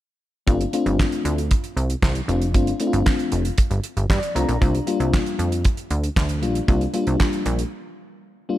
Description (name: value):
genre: early-eighties boogie funk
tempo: 116 BPM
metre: 4/4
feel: straight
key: G minor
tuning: A4 = 441 Hz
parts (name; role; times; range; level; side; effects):
- mellow FM electric piano; accompaniment; 0.5-8.6 s; G3 to Bb5; -24 LUFS; left 3 dB; chorus, slapback echo
- plucky analog bass; bass; 0.5-7.6 s; F1 to G2; -22 LUFS; equal; none
- damped 70s drum kit; drums; 0.5-7.7 s; handclaps, hi-hat, kick drum, snare drum; -22 LUFS; right 1 dB; none
room: light reverb, small room ambience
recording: none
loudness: -19 LUFS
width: side -14 dB against mid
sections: 0.5-8.6 A section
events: FM electric piano fill 3.8-4.6; break 7.7-8.6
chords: 0.5 G9sus4; 4.6 C9sus4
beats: | 0.48 0.99 1.51 2.03 | 2.54 3.06 3.58 4.10 | 4.61 5.13 5.65 6.17 | 6.68 7.20 7.72 8.23